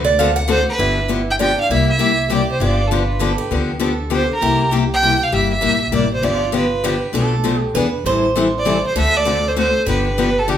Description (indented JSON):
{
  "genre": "acoustic string swing (jazz manouche)",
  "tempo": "198 BPM",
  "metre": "3/4",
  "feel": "swing 60% on 8ths",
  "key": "G mixolydian",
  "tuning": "A4 = 437 Hz",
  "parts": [
    { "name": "picked steel-string acoustic guitar", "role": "second line", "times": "0.0-10.6 s", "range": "D4 to F#5", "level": "-23 LUFS", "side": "right 4 dB", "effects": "none" },
    { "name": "picked steel-string acoustic guitar", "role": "accompaniment", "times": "0.0-10.6 s", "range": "B2 to A4", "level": "-19 LUFS", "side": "left 4 dB", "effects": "none" },
    { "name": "upright bass", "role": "bass", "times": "0.0-10.6 s", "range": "G1 to E2", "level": "-22 LUFS", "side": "equal", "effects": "none" },
    { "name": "warm violin", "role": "melody", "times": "0.5-10.6 s", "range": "G4 to G5", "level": "-18 LUFS", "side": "right 2 dB", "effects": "none" }
  ],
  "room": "wet large studio reverb, RT60 0.8 s",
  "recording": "band playing live in one room",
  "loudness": "-15 LUFS",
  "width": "side -10 dB against mid",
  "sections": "0.8-10.6 A section",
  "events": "none",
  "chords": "0.0 D7; 0.8 G7; 1.7 C7; 2.6 G7; 4.4 C7; 6.2 G7; 7.1 Bm7b5; 7.8 E7; 8.1 Am7; 9.0 D7; 9.9 G7",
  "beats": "0.19 0.49 | 0.79 1.09 1.40 | 1.70 2.00 2.30 | 2.61 2.91 3.21 | 3.51 3.82 4.12 | 4.42 4.72 5.03 | 5.33 5.63 5.93 | 6.24 6.54 6.84 | 7.14 7.45 7.75 | 8.05 8.36 8.66 | 8.96 9.26 9.56 | 9.87 10.17 10.47"
}